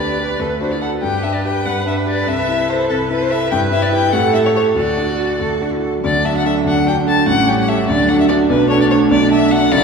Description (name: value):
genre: quick classical-period movement for piano quartet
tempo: 97 BPM (dotted quarters)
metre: 6/8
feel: straight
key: D major from 3.5 s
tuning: A4 = 439 Hz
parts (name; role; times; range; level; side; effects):
- warm violin; melody; 0.0-9.8 s; A4 to A5; -19 LUFS; left 5 dB; none
- rich cello; second line; 0.0-9.8 s; F#3 to B4; -21 LUFS; right 5 dB; none
- clear concert grand piano; accompaniment; 0.0-9.8 s; F#1 to B4; -18 LUFS; equal; none
- warm viola; accompaniment; 0.0-9.8 s; C#4 to B4; -21 LUFS; right 2 dB; none
room: wet scoring stage reverb, RT60 2.0 s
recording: heard from further back in the room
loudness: -13 LUFS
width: side -5 dB against mid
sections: 0.0-6.0 A section; 6.0-9.8 B section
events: none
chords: 0.4 D; 1.0 G; 2.3 Am/C; 3.5 Em/G; 4.1 A5; 4.8 D; 7.3 A7; 7.9 D; 8.5 Bm7